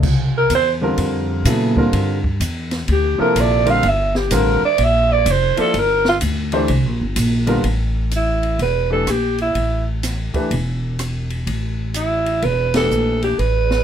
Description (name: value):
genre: modal jazz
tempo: 126 BPM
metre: 4/4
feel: swing 66% on 8ths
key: A phrygian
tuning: A4 = 441 Hz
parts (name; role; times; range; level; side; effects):
- warm concert grand piano; accompaniment; 0.0-13.4 s; C3 to D5; -20 LUFS; equal; none
- upright bass; bass; 0.0-13.8 s; E1 to Bb2; -19 LUFS; equal; none
- open jazz drum kit; drums; 0.0-13.8 s; crash cymbal, hi-hat, kick drum, ride cymbal, rim click, snare drum; -26 LUFS; left 1 dB; none
- growling alto saxophone; melody; 0.4-13.8 s; E4 to F5; -17 LUFS; right 2 dB; none
room: little or no reverb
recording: close, detailed microphones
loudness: -16 LUFS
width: side -9 dB against mid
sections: 0.0-7.6 A section; 7.6-13.8 B section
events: alto saxophone solo 0.0-7.6; band accent 12.7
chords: 0.0 C9sus4; 7.6 A9sus4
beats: | 0.03 0.51 0.98 1.46 | 1.93 2.41 2.88 3.36 | 3.84 4.31 4.79 5.26 | 5.74 6.21 6.69 7.17 | 7.65 8.12 8.60 9.08 | 9.56 10.04 10.51 10.99 | 11.47 11.95 12.43 12.91 | 13.39